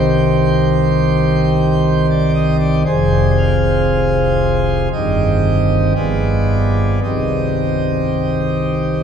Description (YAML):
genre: classical, chorale-style piece for pipe organ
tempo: 58 BPM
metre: 4/4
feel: straight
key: C minor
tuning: A4 = 440 Hz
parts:
  - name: pipe organ, plenum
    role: solo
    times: 0.0-9.0 s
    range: F1 to F5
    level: -13 LUFS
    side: equal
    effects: none
room: wet cathedral reverb, RT60 6.3 s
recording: heard from further back in the room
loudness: -13 LUFS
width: side -7 dB against mid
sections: 0.0-9.0 A section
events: none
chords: 0.0 Cm; 2.9 Fm; 4.9 Cm/G; 6.0 G7b9; 7.0 Cm